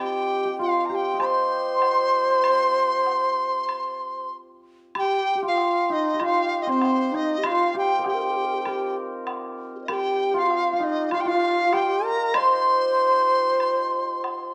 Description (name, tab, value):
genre	chinese traditional, Chinese chamber ensemble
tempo	97 BPM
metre	4/4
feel	straight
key	C yu mode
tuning	A4 = 438 Hz
part	reedy large dizi	melody	0.0-14.5 s	G4 to C6	-26 LUFS	equal	none
part	breathy bright low xiao	second line	0.0-14.5 s	C4 to Eb5	-28 LUFS	equal	none
part	hammered dulcimer	second line	0.0-14.5 s	C4 to Eb5	-29 LUFS	equal	none
part	woodblock	percussion	1.2-14.4 s	none	-36 LUFS	equal	none
room	moderate recital hall reverb, RT60 1.2 s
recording	dark, warm production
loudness	-23 LUFS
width	mono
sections	0.0-5.0 A section; 5.0-14.5 B section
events	none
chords	none